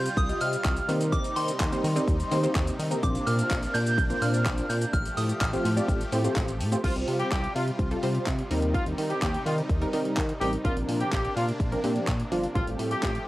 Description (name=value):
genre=dance-pop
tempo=126 BPM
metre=4/4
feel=straight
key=F mixolydian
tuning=A4 = 440 Hz
part: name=soft synth bell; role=melody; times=0.0-5.9 s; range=C6 to G6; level=-31 LUFS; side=right 1 dB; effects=chorus, phaser, cassette tape
part: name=supersaw pad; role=sustained chords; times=0.0-13.3 s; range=C3 to G4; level=-35 LUFS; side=equal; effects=sidechain pumping, cassette tape
part: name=chorused synth bass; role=bass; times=0.0-13.2 s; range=G1 to Eb3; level=-29 LUFS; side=equal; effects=sidechain pumping
part: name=pop drum kit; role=drums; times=0.1-13.3 s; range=crash cymbal, handclaps, hi-hat, kick drum, shaker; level=-30 LUFS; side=equal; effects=none
part: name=funky polysynth comp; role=accompaniment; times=0.3-13.1 s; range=F3 to Eb5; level=-30 LUFS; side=equal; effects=chorus, sidechain pumping, cassette tape
part: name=group handclap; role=percussion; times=0.7-13.1 s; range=none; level=-42 LUFS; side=left 2 dB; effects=none
part: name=warm horn section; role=melody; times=6.8-13.2 s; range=F4 to G4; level=-31 LUFS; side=left 1 dB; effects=sidechain pumping, cassette tape, analog delay
room=light reverb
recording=home recording on cassette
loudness=-24 LUFS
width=side -17 dB against mid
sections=0.0-6.8 A section; 6.8-13.3 B section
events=none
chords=0.0 Csus4; 0.9 Eb6; 3.0 Bbadd9; 4.9 Fadd9/A; 6.8 Csus4; 8.5 Eb6; 10.7 Bbadd9; 12.6 Fadd9/A